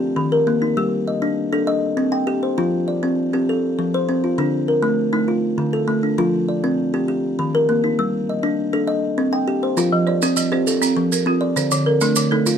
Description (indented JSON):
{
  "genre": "southern african traditional, mbira-style interlocking cycle",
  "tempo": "133 BPM (dotted quarters)",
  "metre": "12/8",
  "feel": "straight",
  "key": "F mixolydian",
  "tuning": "A4 = 440 Hz",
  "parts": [
    { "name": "kalimba", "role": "arpeggios", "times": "0.0-12.6 s", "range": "D3 to G5", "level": "-18 LUFS", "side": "left 1 dB", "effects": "none" },
    { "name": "maracas", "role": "percussion", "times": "9.8-12.6 s", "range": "none", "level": "-24 LUFS", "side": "right 7 dB", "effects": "none" },
    { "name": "folk marimba with medium hard mallets", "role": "arpeggios", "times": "9.9-12.6 s", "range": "D3 to C5", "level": "-21 LUFS", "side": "right 4 dB", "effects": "none" }
  ],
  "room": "light reverb",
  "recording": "none",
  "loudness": "-17 LUFS",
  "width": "side -8 dB against mid",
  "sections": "0.0-9.8 A section; 9.8-12.6 A section",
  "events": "none",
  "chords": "0.0 Eb; 0.8 G5; 1.7 Cm; 2.6 F; 4.4 Dm; 6.2 F5; 7.1 Eb; 8.0 G5; 8.9 Cm; 9.8 F; 11.6 D5",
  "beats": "0.32 | 0.77 1.22 1.67 2.12 | 2.58 3.03 3.48 3.93 | 4.38 4.83 5.28 5.73 | 6.18 6.63 7.08 7.53 | 7.98 8.43 8.88 9.33 | 9.78 10.22 10.67 11.12 | 11.57 12.01 12.46"
}